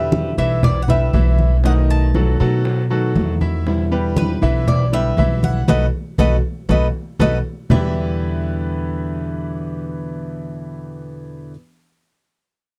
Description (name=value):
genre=latin, Cuban son and guajira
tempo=119 BPM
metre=4/4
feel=straight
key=E minor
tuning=A4 = 440 Hz
part: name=Cuban tres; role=melody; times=0.0-11.5 s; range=B4 to A5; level=-26 LUFS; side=equal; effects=none
part: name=nylon-string guitar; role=accompaniment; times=0.0-11.6 s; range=E2 to F#4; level=-28 LUFS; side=equal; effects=none
part: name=bright grand piano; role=arpeggios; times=0.0-11.5 s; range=D#3 to E5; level=-27 LUFS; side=equal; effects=none
part: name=upright bass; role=bass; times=0.0-11.5 s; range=B1 to B2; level=-22 LUFS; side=equal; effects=none
part: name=bongos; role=percussion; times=0.1-7.8 s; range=none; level=-30 LUFS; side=equal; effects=none
part: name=congas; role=percussion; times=0.1-7.8 s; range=none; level=-23 LUFS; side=equal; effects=none
room=little or no reverb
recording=dark, warm production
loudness=-18 LUFS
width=mono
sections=0.0-7.7 A section; 7.7-11.7 B section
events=band accent 5.7-7.7; drum fill 6.9-7.7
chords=0.0 Em7; 1.6 B7; 3.7 Em7; 5.7 B7; 7.7 Em7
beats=0.12 0.63 1.14 | 1.64 2.15 2.65 3.16 | 3.66 4.17 4.67 5.18 | 5.68 6.19 6.69 7.20 | 7.71 8.21 8.71 9.22 | 9.72 10.23 10.74 11.24